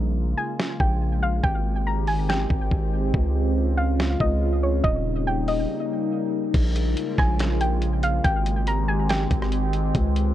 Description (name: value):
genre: hip hop, atmospheric cloud-rap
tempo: 141 BPM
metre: 4/4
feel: half-time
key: unclear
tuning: A4 = 441 Hz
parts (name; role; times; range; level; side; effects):
- warbly tape-like pad; sustained chords; 0.0-10.3 s; Db3 to G4; -27 LUFS; equal; chorus, built-in reverb, phaser, sidechain pumping
- long sustained 808-style bass; bass; 0.0-10.3 s; Eb1 to Db2; -23 LUFS; equal; none
- soft round pluck; melody; 0.4-9.5 s; Db5 to Bb5; -28 LUFS; equal; chorus, tape echo
- boom bap sampler-style drum kit; drums; 0.6-10.3 s; crash cymbal, hi-hat, kick drum, rim click, snare drum; -25 LUFS; equal; none
room: little or no reverb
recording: worn, warbling old tape, cassette tape, warbly pitch drift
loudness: -21 LUFS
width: side -13 dB against mid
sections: 0.0-6.5 A section; 6.5-10.3 B section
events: break 5.7-6.5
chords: 0.0 Bbm7; 1.4 Abmaj7; 3.1 Dbmaj7; 4.8 Eb7; 6.5 Bbm7; 8.2 Abmaj7